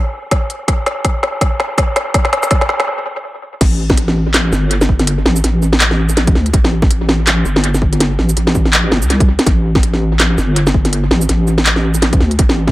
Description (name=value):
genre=half-time drum and bass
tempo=164 BPM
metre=4/4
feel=swing 57% on 16ths, half-time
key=A minor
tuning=A4 = 441 Hz
part: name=electronic kick drum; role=drums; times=0.3-12.7 s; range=none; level=-14 LUFS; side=equal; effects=overdrive
part: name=organic electronic drum kit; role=drums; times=0.3-12.7 s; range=crash cymbal, handclaps, hi-hat, shaker, snare drum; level=-15 LUFS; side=equal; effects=high-pass filter on hats, high-pass filter on snare, high-pass filter on perc, high-pass filter on cymbals, analog delay
part: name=deep soft wobble bass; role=bass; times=3.6-12.7 s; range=G1 to D2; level=-14 LUFS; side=equal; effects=chorus
room=moderate spring reverb, RT60 1.8 s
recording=echo-heavy mix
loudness=-11 LUFS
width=side -17 dB against mid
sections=0.0-3.6 A section; 3.6-12.7 B section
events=build-up 0.0-3.6; drum fill 0.0-2.9; stop 2.9-3.6; drop 3.6-12.7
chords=none